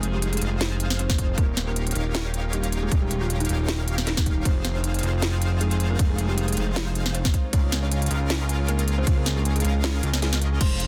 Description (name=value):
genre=future bass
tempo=156 BPM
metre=4/4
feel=swing 54% on 16ths, half-time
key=unclear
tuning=A4 = 441 Hz
part: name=kalimba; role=melody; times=0.0-10.8 s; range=Eb3 to C6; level=-34 LUFS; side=equal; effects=vintage 12-bit sampler grit, sidechain pumping, tape echo
part: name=rich chamber string section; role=sustained chords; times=0.0-10.6 s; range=Db3 to G5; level=-42 LUFS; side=equal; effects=none
part: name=concert harp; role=arpeggios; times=0.0-10.9 s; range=Eb4 to Ab5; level=-41 LUFS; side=equal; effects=none
part: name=big bright polysynth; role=riff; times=0.0-10.9 s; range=Db4 to F5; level=-36 LUFS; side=equal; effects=ensemble chorus, sidechain pumping
part: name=fat analog bass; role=bass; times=0.0-10.9 s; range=Eb1 to Db2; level=-27 LUFS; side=equal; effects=sidechain pumping
part: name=trap drum kit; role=drums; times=0.0-10.9 s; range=crash cymbal, hi-hat, ride cymbal, snare drum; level=-31 LUFS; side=equal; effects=none
part: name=electronic kick drum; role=drums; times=1.1-10.7 s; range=none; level=-24 LUFS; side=equal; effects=none
room=digital ambience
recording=dense, heavily limited modern master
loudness=-24 LUFS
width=mono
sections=0.0-10.6 A section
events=drop 0.0-10.6; kick drops out 10.2-10.6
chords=0.0 Fm7; 1.4 Eb9; 4.5 Fm7; 7.3 Db6